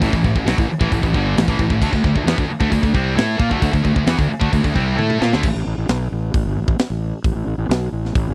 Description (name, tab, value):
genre	heavy metal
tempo	133 BPM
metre	4/4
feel	straight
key	A minor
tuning	A4 = 440 Hz
part	scooped high-gain guitar	riff	0.0-5.4 s	G2 to A4	-24 LUFS	equal	distortion
part	scooped high-gain guitar	riff	0.0-5.4 s	G2 to A4	-24 LUFS	equal	distortion
part	fuzz fingered electric bass	bass	0.0-8.3 s	G1 to Bb2	-23 LUFS	equal	overdrive
part	tight metal drum kit	drums	0.0-8.3 s	crash cymbal, hi-hat, kick drum, snare drum, toms	-22 LUFS	equal	none
room	little or no reverb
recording	dry, close 1970s-style studio recording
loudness	-18 LUFS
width	mono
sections	0.0-5.4 A section; 5.4-8.3 B section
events	drum fill 5.0-5.4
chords	0.0 A5; 1.8 D5; 5.4 A5